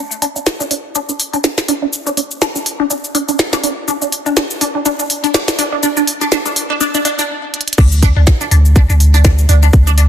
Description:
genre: minimal techno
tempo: 123 BPM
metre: 4/4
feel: swing 57% on 16ths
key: unclear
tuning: A4 = 440 Hz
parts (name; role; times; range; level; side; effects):
- resonant blip pluck; riff; 0.0-10.0 s; D4; -18 LUFS; equal; phaser, lush chorus, sidechain pumping, ping-pong delay
- minimal click drum kit; drums; 0.1-10.1 s; crash cymbal, hi-hat, shaker, snare drum; -17 LUFS; equal; studio reverb, soft clipping on snare
- punchy sub bass; bass; 7.8-10.1 s; D2; -9 LUFS; equal; sidechain pumping
- electronic kick drum; drums; 7.8-9.8 s; none; -9 LUFS; equal; studio reverb
room: light reverb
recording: dense, heavily limited modern master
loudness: -11 LUFS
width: side -10 dB against mid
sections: 0.0-7.8 A section; 7.8-10.1 B section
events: build-up 0.0-7.8; filter sweep on synth arpeggio sound 0.0-7.8; stop 7.3-7.8; drum fill 7.5; drop 7.8-10.1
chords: 0.0 N.C.; 7.8 D5

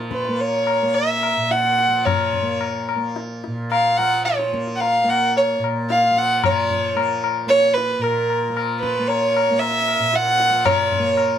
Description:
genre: indian classical, Hindustani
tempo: 112 BPM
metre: 4/4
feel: uneven beats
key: Bb raga todi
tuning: A4 = 440 Hz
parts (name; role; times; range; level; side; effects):
- tanpura; drone; 0.0-11.4 s; Bb2 to Bb3; -26 LUFS; right 1 dB; none
- warm violin; melody; 0.1-11.4 s; Bb4 to Gb5; -18 LUFS; right 1 dB; none
- tabla; percussion; 0.1-11.4 s; none; -24 LUFS; left 9 dB; none
room: light reverb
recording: none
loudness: -17 LUFS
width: side -9 dB against mid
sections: 0.0-6.4 A section; 6.4-11.4 B section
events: speeding up 0.0-11.4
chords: none

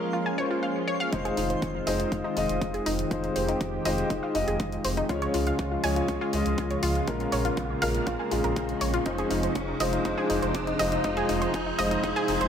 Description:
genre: progressive house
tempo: 121 BPM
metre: 4/4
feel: straight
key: F minor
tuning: A4 = 441 Hz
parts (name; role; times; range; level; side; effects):
- lush unison pad; sustained chords; 0.0-12.5 s; C3 to Ab4; -32 LUFS; right 1 dB; chorus, sidechain pumping
- dark grand piano; stabs; 0.0-12.5 s; Ab3 to Eb5; -29 LUFS; left 2 dB; sidechain pumping, low-pass filter, dub echo
- twinkling granular texture; texture; 0.0-1.1 s; C6; -48 LUFS; right 4 dB; none
- analog pluck; arpeggios; 0.1-12.5 s; Eb4 to Db6; -31 LUFS; equal; chorus, sidechain pumping, dub echo
- swell and riser; sound effects; 0.4-12.5 s; none; -38 LUFS; right 1 dB; none
- dark detuned saw bass; bass; 1.1-12.5 s; F1 to Db2; -32 LUFS; right 1 dB; tube saturation, sidechain pumping
- electronic hi-hat; drums; 1.1-12.5 s; none; -37 LUFS; left 1 dB; sidechain pumping on hats, small room ambience
- electronic kick drum; drums; 1.1-12.1 s; none; -32 LUFS; equal; high-pass filter on kick, small room ambience
room: moderate lush hall reverb, RT60 1.9 s, digital ambience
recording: faint mains hum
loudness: -24 LUFS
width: side -8 dB against mid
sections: 0.0-1.1 A section; 1.1-12.5 B section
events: filter sweep on synth pluck 0.0-1.1; filter sweep on grand piano 0.0-1.1; swell 0.4-1.1; build-up 1.1-12.5; riser 6.6-12.5; drum fill 9.1-12.5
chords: 0.0 Bbm7; 1.1 Fm7; 5.1 Db; 7.1 Bbm7; 9.1 Fm7

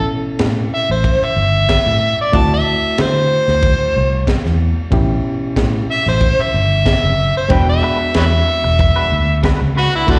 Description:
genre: straight-eighth soul blues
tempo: 93 BPM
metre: 4/4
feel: straight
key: unclear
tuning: A4 = 440 Hz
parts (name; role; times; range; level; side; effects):
- overdriven harmonica; melody; 0.0-10.2 s; D4 to A5; -18 LUFS; equal; slapback echo
- overdriven reed electric piano; accompaniment; 0.0-10.2 s; B2 to A4; -26 LUFS; equal; fast tremolo, slapback echo
- vintage muted fingered electric bass; bass; 0.4-10.2 s; E1 to D3; -19 LUFS; equal; none
- crunchy breakbeat drum kit; drums; 0.4-10.2 s; kick drum, ride cymbal, snare drum; -23 LUFS; equal; slapback echo
- clean electric guitar; stabs; 7.5-10.2 s; G#3 to C5; -27 LUFS; equal; tremolo, slapback echo
room: little or no reverb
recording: live gig heard through the venue's PA, recital hall reverb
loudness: -15 LUFS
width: mono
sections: 0.0-10.2 A section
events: harmonica solo 0.0-10.2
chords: 0.0 A9; 2.3 D9; 4.9 A9; 7.5 E9

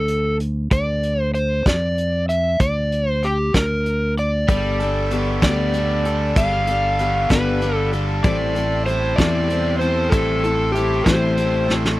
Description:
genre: folk rock and heartland rock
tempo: 64 BPM (dotted quarters)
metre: 6/8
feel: straight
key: unclear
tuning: A4 = 440 Hz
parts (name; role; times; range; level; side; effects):
- overdriven slide guitar; melody; 0.0-11.7 s; G4 to F5; -21 LUFS; equal; none
- fingered electric bass; bass; 0.0-12.0 s; G1 to F2; -22 LUFS; equal; none
- soft brush drum kit; drums; 0.1-12.0 s; hi-hat, kick drum, snare drum; -19 LUFS; equal; none
- picked steel-string acoustic guitar; accompaniment; 4.5-12.0 s; A2 to A4; -25 LUFS; left 5 dB; none
- accordion; sustained chords; 4.5-12.0 s; A4 to C6; -32 LUFS; right 3 dB; none
- biting overdriven guitar; riff; 4.5-12.0 s; A2 to A4; -27 LUFS; right 1 dB; spring reverb
room: little or no reverb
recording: dry, close 1970s-style studio recording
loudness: -17 LUFS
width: side -17 dB against mid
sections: 0.0-12.0 A section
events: drum fill 11.7-12.0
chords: 0.0 D5; 0.7 Bb/D (rootless); 4.5 Gadd9; 8.2 Am7

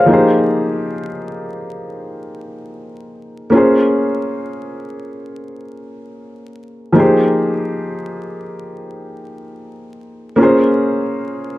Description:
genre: hip hop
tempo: free time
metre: none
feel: none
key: Bb dorian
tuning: A4 = 441 Hz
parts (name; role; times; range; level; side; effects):
- felt-muted upright piano; solo; 0.0-11.6 s; F3 to F5; -15 LUFS; equal; cassette tape, low-pass filter
room: moderate studio reverb, RT60 0.6 s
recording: dark, warm production, vinyl crackle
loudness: -13 LUFS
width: side -16 dB against mid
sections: 0.0-11.6 A section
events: none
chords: 0.1 Fm11; 3.5 Bbm9; 6.9 Fm11; 10.4 Bbm9

